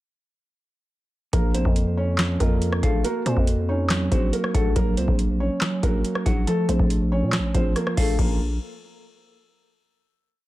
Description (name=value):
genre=hip hop, trap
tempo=140 BPM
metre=4/4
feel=half-time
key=Bb harmonic minor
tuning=A4 = 440 Hz
part: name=felt-muted upright piano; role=melody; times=1.3-8.4 s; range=Gb3 to Db5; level=-28 LUFS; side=equal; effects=analog delay
part: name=mellow electric guitar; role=accompaniment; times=1.3-8.4 s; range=F3 to Gb5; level=-26 LUFS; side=right 2 dB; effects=none
part: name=growling 808-style bass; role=bass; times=1.3-8.6 s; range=Bb1 to Bb2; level=-25 LUFS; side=equal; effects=none
part: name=booming analog drum machine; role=drums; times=1.3-8.4 s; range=crash cymbal, handclaps, hi-hat, kick drum, rim click, snare drum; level=-23 LUFS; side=equal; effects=none
room=digital ambience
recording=echo-heavy mix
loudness=-20 LUFS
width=side -16 dB against mid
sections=1.3-8.2 verse; 8.2-9.9 final chord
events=none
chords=1.3 Bbm; 3.0 Ebm; 4.8 Gb/Bb; 6.5 F/Bb; 8.2 Bbm